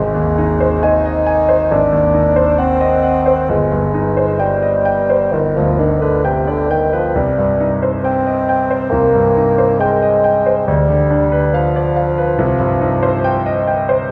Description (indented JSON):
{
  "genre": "classical, romantic duo for bassoon and grand piano",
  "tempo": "64-71 BPM",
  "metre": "4/4",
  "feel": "rubato",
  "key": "C minor",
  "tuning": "A4 = 441 Hz",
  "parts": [
    { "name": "warm bassoon", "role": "melody", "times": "0.0-13.7 s", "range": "C3 to Eb4", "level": "-18 LUFS", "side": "equal", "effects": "none" },
    { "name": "bright concert grand piano", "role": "accompaniment", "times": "0.0-14.1 s", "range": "G1 to Ab5", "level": "-18 LUFS", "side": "equal", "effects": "none" }
  ],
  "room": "wet recital hall reverb, RT60 1.7 s",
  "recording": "heard from further back in the room",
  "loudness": "-15 LUFS",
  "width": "mono",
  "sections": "0.0-14.1 A section",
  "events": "none",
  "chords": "0.0 Ab; 1.7 Ab7; 3.5 Cm/G; 5.3 G; 7.2 Cm; 10.7 Bdim/D; 12.4 Cm"
}